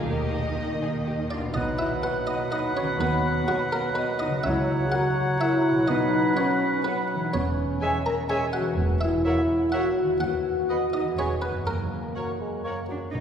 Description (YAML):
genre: cinematic, playful, whimsical film cue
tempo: 125 BPM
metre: 3/4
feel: straight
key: B major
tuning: A4 = 439 Hz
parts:
  - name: warm studio violin section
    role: second line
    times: 0.0-12.7 s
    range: F4 to F#5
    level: -41 LUFS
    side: left 2 dB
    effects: none
  - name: warm studio viola section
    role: accompaniment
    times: 0.0-12.7 s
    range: Bb3 to B4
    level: -39 LUFS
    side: equal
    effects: none
  - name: concert harp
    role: arpeggios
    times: 0.0-13.2 s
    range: F#2 to C#5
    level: -33 LUFS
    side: left 2 dB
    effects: none
  - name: warm studio cello section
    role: bass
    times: 0.0-13.2 s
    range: D#2 to D#4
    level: -34 LUFS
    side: right 2 dB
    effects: none
  - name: warm studio double bass section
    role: bass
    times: 0.0-13.2 s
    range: E1 to Eb2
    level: -34 LUFS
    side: right 1 dB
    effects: none
  - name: warm studio violin section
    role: melody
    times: 0.1-12.7 s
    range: Eb5 to G#5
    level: -41 LUFS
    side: left 2 dB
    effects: none
  - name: buff-stop harpsichord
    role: melody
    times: 1.3-12.9 s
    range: F#4 to A#5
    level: -33 LUFS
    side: right 1 dB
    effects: none
  - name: warm French horn section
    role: sustained chords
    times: 1.3-12.9 s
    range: F#3 to A#4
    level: -26 LUFS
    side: left 1 dB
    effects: none
  - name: mellow hollow flute section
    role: second line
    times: 1.5-12.7 s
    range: F#5 to B5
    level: -34 LUFS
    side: right 1 dB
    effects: none
  - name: warm clarinet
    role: second line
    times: 1.5-12.8 s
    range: A#4 to C#5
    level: -34 LUFS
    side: left 1 dB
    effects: none
  - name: clear cor anglais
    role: second line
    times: 1.6-12.8 s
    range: C#5 to F#5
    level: -34 LUFS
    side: right 1 dB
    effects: none
  - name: mellow bassoon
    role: accompaniment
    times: 1.6-13.0 s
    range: F#3 to B3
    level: -34 LUFS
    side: right 2 dB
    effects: none
room: wet cathedral reverb, RT60 3.9 s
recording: recorded in a church or concert hall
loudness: -23 LUFS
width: side -8 dB against mid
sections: 0.0-1.6 A section; 1.6-13.1 B section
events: none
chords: 0.1 Eb; 1.6 B; 3.0 B/D#; 4.5 F#7/C#; 5.9 B; 7.3 C#m/E; 8.8 F#7/E; 10.2 B/D#; 11.2 C#m7/E; 11.7 F#